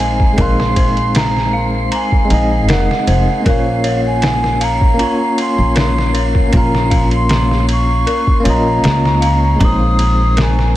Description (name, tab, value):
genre	trip hop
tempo	78 BPM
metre	4/4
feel	straight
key	Bb minor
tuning	A4 = 440 Hz
part	mellow baroque flute	melody	0.0-10.8 s	F5 to Eb6	-19 LUFS	right 1 dB	vintage 12-bit sampler grit, tape echo
part	bell-like tine electric piano	accompaniment	0.0-10.8 s	Ab3 to F5	-19 LUFS	equal	tremolo, tape echo
part	dark detuned synth bell	arpeggios	0.0-10.8 s	Bb4 to Bb5	-24 LUFS	left 5 dB	chorus, analog delay
part	upright bass	bass	0.0-10.8 s	F1 to Db2	-16 LUFS	equal	none
part	trip hop sampler-style drum kit	drums	0.0-10.8 s	kick drum, ride cymbal, snare drum	-18 LUFS	equal	vintage 12-bit sampler grit
part	wind-like tuned noise texture	texture	0.0-10.8 s	C7	-28 LUFS	right 3 dB	built-in reverb
room	little or no reverb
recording	echo-heavy mix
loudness	-11 LUFS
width	side -14 dB against mid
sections	0.0-10.8 A section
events	none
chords	0.0 Ab/Bb; 3.4 Bbm; 9.6 Ab/Bb